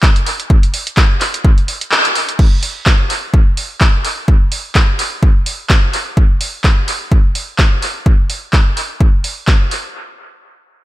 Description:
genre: house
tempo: 127 BPM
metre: 4/4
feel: swing 56% on 16ths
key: none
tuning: none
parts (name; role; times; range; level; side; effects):
- electronic kick drum; drums; 0.0-9.6 s; none; -10 LUFS; equal; none
- punchy analog drum machine; drums; 0.0-9.8 s; crash cymbal, handclaps, hi-hat; -17 LUFS; equal; dub echo
room: digital ambience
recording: echo-heavy mix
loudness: -11 LUFS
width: side -16 dB against mid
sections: 0.0-2.4 A section; 2.4-9.9 B section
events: kick drops out 1.9-2.4; band accent 1.9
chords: none

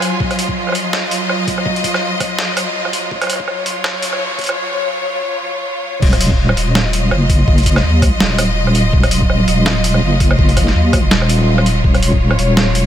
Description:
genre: half-time drum and bass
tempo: 165 BPM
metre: 4/4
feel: swing 56% on 16ths, half-time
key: Eb minor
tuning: A4 = 442 Hz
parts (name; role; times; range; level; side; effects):
- bright symphonic string section; sustained chords; 0.0-12.9 s; Gb3 to Ab5; -18 LUFS; equal; sidechain pumping
- boom bap sampler-style drum kit; drums; 0.0-12.8 s; crash cymbal, hi-hat, snare drum, woodblock; -19 LUFS; right 1 dB; high-pass filter on hats, small room ambience, high-pass filter on perc, high-pass filter on snare, high-pass filter on cymbals
- electronic kick drum; drums; 0.2-12.2 s; none; -15 LUFS; equal; small room ambience
- deep soft wobble bass; bass; 6.0-12.9 s; Eb1 to Eb2; -14 LUFS; equal; chorus
room: moderate huge ambient reverb, RT60 7.5 s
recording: dreamy mix soaked in reverb, high-pass filter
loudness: -12 LUFS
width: side -10 dB against mid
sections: 0.0-6.0 A section; 6.0-12.9 B section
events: build-up 0.0-6.0; drop 6.0-12.9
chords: 0.0 Ebmadd9

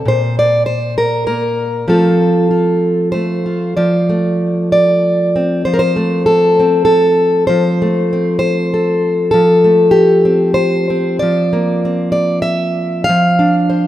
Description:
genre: folk, solo fingerstyle acoustic guitar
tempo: 97 BPM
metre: 3/4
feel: rubato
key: F major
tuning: A4 = 441 Hz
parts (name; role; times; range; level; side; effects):
- fingerpicked plugged-in steel-string acoustic guitar; solo; 0.0-13.9 s; Bb2 to F5; -11 LUFS; equal; none
room: moderate lush hall reverb, RT60 2.4 s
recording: rough home demo mix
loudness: -11 LUFS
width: side -13 dB against mid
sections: 0.0-3.8 A section; 3.8-13.9 B section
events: none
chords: 0.0 N.C.; 1.9 F; 11.2 Bbadd9/F

